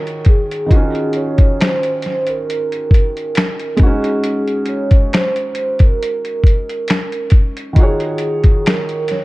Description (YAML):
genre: lo-fi hip hop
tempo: 68 BPM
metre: 4/4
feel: swing 56% on 16ths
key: Eb dorian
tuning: A4 = 440 Hz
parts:
  - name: vibraphone with soft mallets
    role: melody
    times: 0.0-9.2 s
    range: Ab4 to Db5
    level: -20 LUFS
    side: right 1 dB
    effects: low-pass filter
  - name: felt-muted upright piano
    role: accompaniment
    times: 0.0-9.2 s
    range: Eb3 to Db5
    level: -22 LUFS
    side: right 1 dB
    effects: cassette tape, low-pass filter
  - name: lo-fi sampler-style drum kit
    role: drums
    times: 0.1-9.2 s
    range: finger snaps, hi-hat, kick drum, snare drum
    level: -12 LUFS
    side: equal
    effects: none
room: small room ambience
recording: dark, warm production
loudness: -13 LUFS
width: side -20 dB against mid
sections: 0.7-9.2 A section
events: none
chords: 0.0 Ebm11; 3.8 Ab7sus4; 7.8 Ebm11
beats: | 0.71 1.59 2.47 3.35 | 4.24 5.12 6.00 6.88 | 7.77 8.65